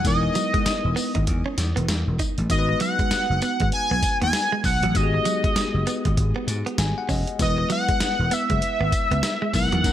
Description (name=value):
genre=R&B, new jack swing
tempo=98 BPM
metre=4/4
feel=swing 61% on 16ths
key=unclear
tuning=A4 = 439 Hz
part: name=octave-doubled lead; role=melody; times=0.0-9.9 s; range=D#5 to G#5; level=-24 LUFS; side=equal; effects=chorus, phaser, digital delay
part: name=bell-like tine electric piano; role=accompaniment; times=0.0-9.9 s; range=F#3 to G#5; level=-30 LUFS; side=left 6 dB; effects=none
part: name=direct-recorded clean electric guitar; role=riff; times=0.0-9.8 s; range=F#3 to D#4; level=-30 LUFS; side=right 5 dB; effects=lush chorus
part: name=vintage slap bass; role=bass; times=0.0-9.9 s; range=E1 to G#2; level=-24 LUFS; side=equal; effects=none
part: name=dusty soul sampler-style drum kit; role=drums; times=0.0-9.9 s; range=hi-hat, kick drum, snare drum, tambourine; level=-26 LUFS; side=equal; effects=overdrive
room=light reverb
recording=none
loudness=-20 LUFS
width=side -11 dB against mid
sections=0.0-9.9 A section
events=tine electric piano fill 6.5-7.4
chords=0.0 Emaj7; 2.5 G#m7; 7.4 Emaj7